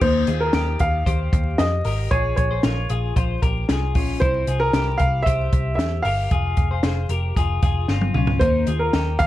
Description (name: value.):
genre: jangly indie pop.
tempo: 114 BPM.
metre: 4/4.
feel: straight.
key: unclear.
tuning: A4 = 440 Hz.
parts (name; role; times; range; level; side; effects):
warm upright piano; melody; 0.0-9.3 s; Bb4 to F5; -23 LUFS; right 1 dB; none.
twelve-string electric guitar; arpeggios; 0.0-9.3 s; Bb3 to C5; -27 LUFS; left 6 dB; spring reverb.
vintage muted picked electric bass; bass; 0.0-9.3 s; F1 to F2; -23 LUFS; equal; none.
compact cocktail drum kit; drums; 0.0-9.3 s; crash cymbal, hi-hat, kick drum, snare drum, toms; -22 LUFS; equal; none.
room: light reverb.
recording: dark, warm production, vinyl crackle.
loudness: -18 LUFS.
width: side -14 dB against mid.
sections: 0.0-9.3 A section.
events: drum fill 7.9-8.4.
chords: 0.0 Eb; 2.1 Bbm; 4.2 C; 6.3 Fm; 8.4 Eb.